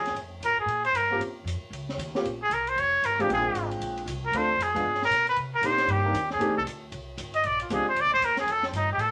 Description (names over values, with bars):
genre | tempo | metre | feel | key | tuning
jazz, small-group swing and bop | 231 BPM | 4/4 | swing 60% on 8ths | Bb mixolydian | A4 = 442 Hz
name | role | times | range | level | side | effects
trumpet with straight mute | melody | 0.0-9.1 s | C4 to Eb5 | -26 LUFS | equal | none
upright bass | bass | 0.0-9.1 s | F1 to C3 | -38 LUFS | equal | none
open jazz drum kit | drums | 0.1-9.1 s | hi-hat, kick drum, ride cymbal, snare drum | -41 LUFS | equal | none
warm concert grand piano | accompaniment | 1.1-7.9 s | Ab3 to G5 | -32 LUFS | equal | none
room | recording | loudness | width
moderate studio ambience, RT60 0.5 s | none | -26 LUFS | mono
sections
0.0-9.1 A section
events
muted trumpet solo 0.0-9.1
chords
0.2 Fm; 0.7 Bbsus2; 1.2 Eb13; 3.3 Bb13; 4.3 Dm7; 4.8 G; 5.4 Cm7; 6.4 F13 (rootless); 7.4 Bb13; 8.5 Fadd9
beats
| 0.16 0.42 0.68 0.94 | 1.21 1.47 1.73 1.99 | 2.25 2.51 2.77 3.03 | 3.29 3.55 3.81 4.07 | 4.33 4.59 4.85 5.11 | 5.37 5.62 5.88 6.14 | 6.40 6.66 6.92 7.18 | 7.44 7.70 7.96 8.21 | 8.47 8.73 8.99